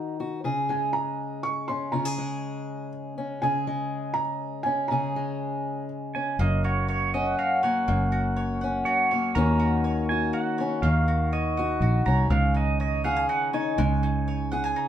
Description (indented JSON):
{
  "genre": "acoustic folk duo or small band",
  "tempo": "122 BPM",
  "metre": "3/4",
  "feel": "straight",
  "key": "Bb minor",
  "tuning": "A4 = 442 Hz",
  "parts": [
    { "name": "felt-muted upright piano", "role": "melody", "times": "0.0-5.8 s", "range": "Ab5 to Db6", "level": "-29 LUFS", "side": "right 3 dB", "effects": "none" },
    { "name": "fingerpicked acoustic archtop guitar", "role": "accompaniment", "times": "0.0-14.9 s", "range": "Gb2 to Ab4", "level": "-28 LUFS", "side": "left 2 dB", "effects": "none" },
    { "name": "pedal steel guitar", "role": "second line", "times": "6.1-14.5 s", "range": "Db5 to Bb5", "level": "-29 LUFS", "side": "right 5 dB", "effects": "none" },
    { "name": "mandolin", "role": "arpeggios", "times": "6.4-14.9 s", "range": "Ab3 to Ab5", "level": "-29 LUFS", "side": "equal", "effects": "none" },
    { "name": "fingered electric bass", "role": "bass", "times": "6.4-14.7 s", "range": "Gb1 to Eb2", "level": "-25 LUFS", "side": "equal", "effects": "none" }
  ],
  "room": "moderate studio reverb, RT60 0.6 s",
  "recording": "band playing live in one room",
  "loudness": "-23 LUFS",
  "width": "side -10 dB against mid",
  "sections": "0.0-6.4 A section; 6.4-14.9 B section",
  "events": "pedal steel guitar solo 6.4-14.9",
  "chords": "0.4 Bbm7/Db; 6.4 Gb; 9.4 Ebm7; 12.3 Dbsus2"
}